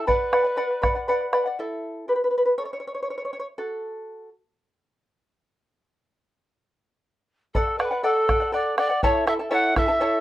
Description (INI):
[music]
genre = andean folk, Andean ensemble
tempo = 80 BPM (dotted quarters)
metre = 6/8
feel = straight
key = unclear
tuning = A4 = 440 Hz
[part]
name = breathy bright pan flute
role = melody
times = 0.0-1.3, 7.5-10.2 s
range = A4 to F#5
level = -25 LUFS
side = equal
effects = none
[part]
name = mellow quena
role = second line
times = 0.0-1.3, 7.6-10.2 s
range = A5 to F#6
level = -30 LUFS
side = right 1 dB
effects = none
[part]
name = charango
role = accompaniment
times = 0.0-4.3, 7.5-10.2 s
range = E4 to A5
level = -24 LUFS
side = equal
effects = none
[part]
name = bombo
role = percussion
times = 0.1-1.5, 7.5-9.9 s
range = none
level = -26 LUFS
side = right 1 dB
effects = none
[sound]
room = moderate studio reverb, RT60 0.7 s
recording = rough home demo mix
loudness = -21 LUFS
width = side -14 dB against mid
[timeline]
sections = 0.0-1.6 A section; 1.6-7.5 B section; 7.5-10.2 C section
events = charango solo 1.6-7.5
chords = 0.1 Bm; 1.6 A5; 4.6 N.C.; 7.5 D; 9.0 A